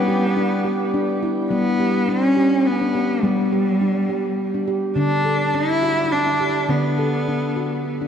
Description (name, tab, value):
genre	world meditative, meditative tuned percussion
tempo	104 BPM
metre	3/4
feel	swing 54% on 16ths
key	G lydian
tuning	A4 = 437 Hz
part	rich cello	melody	0.0-8.1 s	G3 to E4	-21 LUFS	equal	shimmer reverb, tape echo
part	warm analog pad	sustained chords	0.0-1.5 s	B4 to D6	-31 LUFS	left 2 dB	chorus, shimmer reverb
part	handpan	arpeggios	0.0-8.1 s	D3 to A4	-20 LUFS	equal	shimmer reverb, tape echo
room	wet lush hall reverb, RT60 1.9 s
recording	dark, warm production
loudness	-18 LUFS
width	side -8 dB against mid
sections	0.0-1.5 A section; 1.5-8.1 B section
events	none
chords	0.0 G; 5.0 D